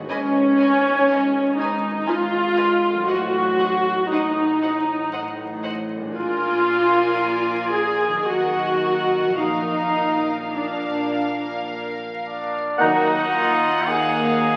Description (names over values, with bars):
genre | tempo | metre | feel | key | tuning
classical, slow romantic movement for symphony orchestra | 52-62 BPM | 3/4 | rubato | Eb minor | A4 = 441 Hz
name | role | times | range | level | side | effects
concert harp | arpeggios | 0.0-14.6 s | Ab2 to C5 | -38 LUFS | equal | none
warm studio violin section | melody | 0.1-14.6 s | F5 to Ab5 | -35 LUFS | equal | none
clear studio violin section | second line | 0.1-14.6 s | Eb4 to Gb5 | -33 LUFS | equal | none
dark studio viola section | accompaniment | 0.1-14.6 s | Bb3 to Ab4 | -22 LUFS | equal | none
rich symphonic double bass section | bass | 0.1-14.6 s | Ab1 to Eb2 | -42 LUFS | equal | none
warm studio cello section | bass | 0.1-14.6 s | Eb2 to Eb3 | -35 LUFS | equal | none
warm trumpet | stabs | 12.3-14.6 s | D4 to Ab4 | -24 LUFS | equal | none
clear clarinet | second line | 12.8-13.2 s | Eb4 | -29 LUFS | equal | none
silver concert flute | second line | 12.8-13.3 s | Bb5 | -29 LUFS | equal | none
warm oboe | second line | 12.8-13.2 s | Gb5 | -27 LUFS | equal | none
mellow bassoon | accompaniment | 12.8-13.2 s | Eb3 | -31 LUFS | equal | none
clear trombone section | sustained chords | 12.8-13.2 s | Bb2 to Gb3 | -37 LUFS | equal | none
mellow French horn section | sustained chords | 12.8-13.2 s | Bb3 to Bb4 | -30 LUFS | equal | none
room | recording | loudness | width
wet scoring stage reverb, RT60 1.9 s | very old 78 rpm record, vinyl crackle | -21 LUFS | mono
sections
0.0-12.8 A section; 12.8-14.6 B section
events
none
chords
0.1 Abm; 3.1 Adim7; 6.1 Bb7; 8.3 Ebm; 9.4 Bb; 12.8 Ebm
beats
| 0.11 1.11 2.08 | 3.08 4.10 5.12 | 6.15 7.19 8.26 | 9.38 10.53 11.68 | 12.80 13.88